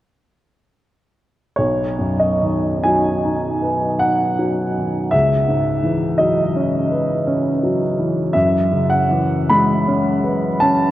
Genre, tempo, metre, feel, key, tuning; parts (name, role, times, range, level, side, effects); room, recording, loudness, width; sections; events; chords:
classical, impressionist solo piano; 45-56 BPM; 3/4; rubato; B major; A4 = 440 Hz
warm grand piano; solo; 1.6-10.9 s; B1 to B5; -15 LUFS; equal
wet cathedral reverb, RT60 5.5 s; worn, warbling old tape, cassette tape, warbly pitch drift; -16 LUFS; side -14 dB against mid
1.6-10.9 A section
1.6 B6; 5.1 C#m11; 8.3 F#11